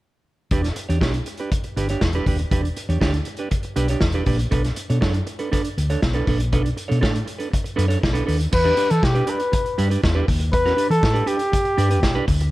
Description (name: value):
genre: disco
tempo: 120 BPM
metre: 4/4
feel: straight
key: E dorian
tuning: A4 = 440 Hz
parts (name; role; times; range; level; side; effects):
- semi-hollow electric guitar; accompaniment; 0.5-12.4 s; D4 to C#5; -26 LUFS; right 4 dB; none
- hollow-body short-scale fingered electric bass; bass; 0.5-12.5 s; D#1 to E3; -21 LUFS; equal; none
- vintage drum kit; drums; 0.5-12.5 s; crash cymbal, hi-hat, kick drum, snare drum; -23 LUFS; equal; none
- warm flugelhorn; melody; 8.5-12.3 s; G4 to B4; -21 LUFS; left 1 dB; none
room: small room ambience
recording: dark, warm production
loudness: -18 LUFS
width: side -17 dB against mid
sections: 0.5-8.5 A section; 8.5-12.5 B section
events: none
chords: 0.5 Em7; 4.5 Bm7; 8.5 Em7